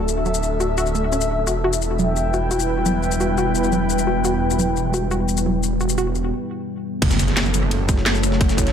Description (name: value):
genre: dark technical drum and bass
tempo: 173 BPM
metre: 4/4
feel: straight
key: unclear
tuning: A4 = 440 Hz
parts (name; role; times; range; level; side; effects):
- deep dark ambient pad; sustained chords; 0.0-8.7 s; G3 to D5; -26 LUFS; left 1 dB; chorus, built-in reverb, sidechain pumping
- wide detuned saw bass; bass; 0.0-8.7 s; D1 to F#1; -23 LUFS; equal; chorus, tube saturation, sidechain pumping
- airy breathy pad; texture; 0.0-8.7 s; D4 to G5; -24 LUFS; left 1 dB; chorus, sidechain pumping
- drum and bass drum kit; drums; 0.1-8.7 s; crash cymbal, hi-hat, rim click, shaker, snare drum; -25 LUFS; left 3 dB; overdrive, studio reverb
- warbly dusty pluck; arpeggios; 0.3-6.0 s; F#3 to F#4; -25 LUFS; equal; chorus, sidechain pumping, ping-pong delay
- breakbeat sampler-style drum kit; drums; 7.0-8.7 s; ride cymbal, snare drum; -30 LUFS; right 1 dB; high-pass filter on cymbals, studio reverb, high-pass filter on snare
- electronic kick drum; drums; 7.0-8.7 s; none; -19 LUFS; equal; overdrive, studio reverb
- impact; sound effects; 7.0-8.4 s; none; -26 LUFS; equal; none
room: light reverb, digital ambience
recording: none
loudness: -18 LUFS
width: side -8 dB against mid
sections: 0.0-7.0 A section; 7.0-8.7 B section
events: filter sweep on ambient pad 0.0-7.0; break 6.3-7.0; drop 7.0-8.7; impact 7.0-8.4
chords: 0.0 D; 1.5 Em; 7.0 F#m7